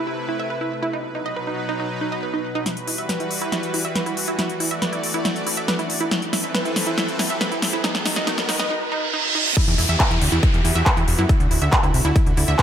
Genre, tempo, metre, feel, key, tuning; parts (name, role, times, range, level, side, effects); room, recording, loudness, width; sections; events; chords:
uplifting trance; 139 BPM; 4/4; straight; E minor; A4 = 440 Hz
supersaw pad; sustained chords; 0.0-12.6 s; B2 to D5; -28 LUFS; right 1 dB; sidechain pumping
wide unison pluck; arpeggios; 0.1-12.6 s; D#4 to E5; -26 LUFS; right 2 dB; sidechain pumping, digital delay
big-room dance drum kit; drums; 2.7-12.6 s; crash cymbal, handclaps, hi-hat, snare drum; -23 LUFS; left 1 dB; overdrive, studio reverb, sidechain pumping on hats, sidechain pumping on cymbals
riser, reverse cymbal and downlifter; sound effects; 4.6-12.6 s; -27 LUFS; right 2 dB
electronic kick drum; drums; 9.6-12.6 s; -18 LUFS; equal; overdrive, studio reverb
plucky analog bass; bass; 9.7-12.6 s; D1 to F#2; -21 LUFS; equal; sidechain pumping
light reverb; high-pass filter; -19 LUFS; side -9 dB against mid
0.0-2.7 A section; 2.7-9.6 B section; 9.6-12.6 C section
build-up 2.7-9.6; drum fill 2.7-8.7; filter sweep on synth pluck 2.7-9.6; riser 4.6-8.7; reverse cymbal 8.7-9.6; drop 9.6-12.6
0.0 Amadd9; 0.9 B; 2.7 Emadd9; 4.4 Dadd9; 6.1 Amadd9; 7.8 B; 9.6 Emadd9; 11.3 Dadd9